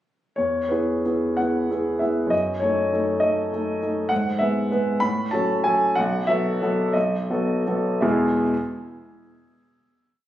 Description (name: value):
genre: classical, romantic character piece for solo piano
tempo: 53-68 BPM (dotted quarters)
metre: 6/8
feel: rubato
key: E major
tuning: A4 = 440 Hz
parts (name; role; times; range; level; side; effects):
- warm concert grand piano; solo; 0.4-8.5 s; B1 to B5; -20 LUFS; equal; none
room: moderate recital hall reverb, RT60 1.5 s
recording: recorded on a phone in the room, studio reverb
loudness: -20 LUFS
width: side -12 dB against mid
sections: 0.4-8.0 A section; 8.0-10.1 final chord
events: slowing down 3.2-8.0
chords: 0.4 E; 2.3 D#dim/F#; 4.1 E/G#; 5.0 F#m/A; 6.0 B7sus4; 8.0 E